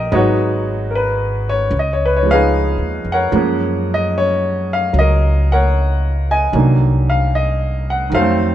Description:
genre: jazz ballad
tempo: 75 BPM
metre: 4/4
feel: swing 68% on 8ths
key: unclear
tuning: A4 = 440 Hz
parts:
  - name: clear upright piano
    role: accompaniment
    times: 0.0-8.5 s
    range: D3 to Bb5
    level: -16 LUFS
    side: equal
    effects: none
  - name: upright bass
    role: bass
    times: 0.0-8.5 s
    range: Ab1 to Gb2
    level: -17 LUFS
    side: equal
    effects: none
room: light reverb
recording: nothing above 10.4 kHz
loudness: -14 LUFS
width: side -12 dB against mid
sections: 0.0-8.5 A section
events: none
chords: 0.1 Abm7; 1.7 Db13; 3.3 Gbmaj7; 6.5 Cm7b5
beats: | 0.12 0.92 1.72 2.53 | 3.33 4.14 4.94 5.75 | 6.54 7.34 8.14

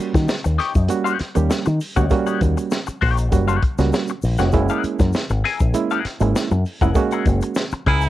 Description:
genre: funk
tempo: 99 BPM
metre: 4/4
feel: straight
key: unclear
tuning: A4 = 440 Hz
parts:
  - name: clean electric guitar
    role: accompaniment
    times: 0.0-8.1 s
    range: Eb4 to Ab5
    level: -24 LUFS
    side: left 8 dB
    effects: wah, cassette tape, plate reverb
  - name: barky reed electric piano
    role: stabs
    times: 0.0-7.6 s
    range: G3 to G4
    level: -22 LUFS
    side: right 6 dB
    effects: overdrive, cassette tape, plate reverb
  - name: fingered electric bass with an envelope filter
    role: bass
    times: 0.0-8.1 s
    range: F1 to Eb3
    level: -19 LUFS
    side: left 1 dB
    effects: none
  - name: egg shaker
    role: percussion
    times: 0.0-8.1 s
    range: none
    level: -42 LUFS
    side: left 8 dB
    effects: none
  - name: compact cocktail drum kit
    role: drums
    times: 0.1-8.1 s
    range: hi-hat, kick drum, snare drum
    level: -22 LUFS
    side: left 1 dB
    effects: cassette tape
  - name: bright baritone saxophone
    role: second line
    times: 7.9-8.1 s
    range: Fb4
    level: -20 LUFS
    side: right 6 dB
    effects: cassette tape
room: light reverb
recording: home recording on cassette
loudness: -17 LUFS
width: side -14 dB against mid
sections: 0.0-8.1 A section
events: band accent 7.0-8.1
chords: 0.0 Eb7#9; 4.5 Gb9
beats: 0.29 0.89 1.50 | 2.11 2.71 3.32 3.93 | 4.53 5.14 5.75 6.35 | 6.96 7.57

